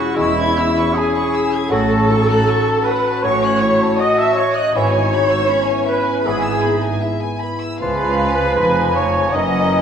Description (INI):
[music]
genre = classical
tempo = 79 BPM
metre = 4/4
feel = rubato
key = unclear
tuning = A4 = 439 Hz
[part]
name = clear chamber violin section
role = melody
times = 0.0-9.8 s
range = E5 to G#6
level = -27 LUFS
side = left 1 dB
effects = none
[part]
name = mellow cor anglais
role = second line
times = 0.0-9.8 s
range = E4 to E5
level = -22 LUFS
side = right 2 dB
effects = none
[part]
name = warm chamber violin section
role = second line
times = 0.0-9.8 s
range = E4 to E5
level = -26 LUFS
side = left 5 dB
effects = none
[part]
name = warm clarinet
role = second line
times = 0.0-9.8 s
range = B3 to F#4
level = -26 LUFS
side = left 1 dB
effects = none
[part]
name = warm chamber viola section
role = accompaniment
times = 0.0-9.8 s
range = E4 to E5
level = -22 LUFS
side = right 1 dB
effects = none
[part]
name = mellow French horn section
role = sustained chords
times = 0.0-9.8 s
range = G#3 to G#4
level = -25 LUFS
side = left 4 dB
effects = none
[part]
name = concert harp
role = arpeggios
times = 0.0-9.8 s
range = F#2 to E5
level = -27 LUFS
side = left 4 dB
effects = none
[part]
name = clear trumpet section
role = stabs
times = 0.0-9.8 s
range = E4 to E5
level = -22 LUFS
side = equal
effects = none
[part]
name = large flute ensemble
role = second line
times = 0.2-9.8 s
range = G#5 to C#6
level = -27 LUFS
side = equal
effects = none
[part]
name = clear bassoon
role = accompaniment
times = 0.2-9.8 s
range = E3 to G#3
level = -26 LUFS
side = right 2 dB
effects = none
[part]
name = rich chamber double bass section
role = bass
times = 0.2-9.8 s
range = E1 to C#2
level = -25 LUFS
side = right 3 dB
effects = none
[part]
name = rich studio cello section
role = bass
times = 0.2-9.8 s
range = E2 to C#3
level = -25 LUFS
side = right 2 dB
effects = none
[sound]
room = wet concert hall reverb, RT60 1.9 s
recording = minimal, uncompressed stereo recording, vinyl crackle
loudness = -14 LUFS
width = side -8 dB against mid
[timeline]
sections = 0.0-9.8 A section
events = none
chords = 0.0 C#m/E; 1.7 F#m/A; 4.8 E/G#; 7.8 C#7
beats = 0.17 0.94 | 1.70 2.47 3.23 3.99 | 4.76 5.52 6.27 7.04 | 7.82 8.58 9.34